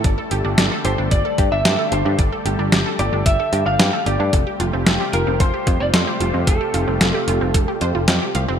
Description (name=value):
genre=synthwave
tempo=112 BPM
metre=4/4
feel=straight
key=unclear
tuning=A4 = 441 Hz
part: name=lush unison pad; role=sustained chords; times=0.0-8.6 s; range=C3 to A4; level=-25 LUFS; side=equal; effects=chorus, sidechain pumping
part: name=wide unison pluck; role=arpeggios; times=0.0-8.6 s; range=C4 to G5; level=-26 LUFS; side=right 3 dB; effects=ping-pong delay
part: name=picked electric bass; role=bass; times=0.0-8.6 s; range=F1 to G2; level=-21 LUFS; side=equal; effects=tube saturation
part: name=detuned 8-bit digital drum machine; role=drums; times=0.0-8.5 s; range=hi-hat, snare drum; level=-20 LUFS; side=equal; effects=gated reverb
part: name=electronic kick drum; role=drums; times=0.0-7.7 s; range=none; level=-18 LUFS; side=equal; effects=none
part: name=lightly driven lead guitar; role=melody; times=0.9-8.0 s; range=A4 to F5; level=-23 LUFS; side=equal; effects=lush chorus, ping-pong delay
room=moderate lush hall reverb, RT60 1.9 s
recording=bright 1980s-style digital production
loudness=-16 LUFS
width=side -8 dB against mid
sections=0.0-8.6 A section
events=none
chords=0.0 Gsus2; 4.3 Fadd9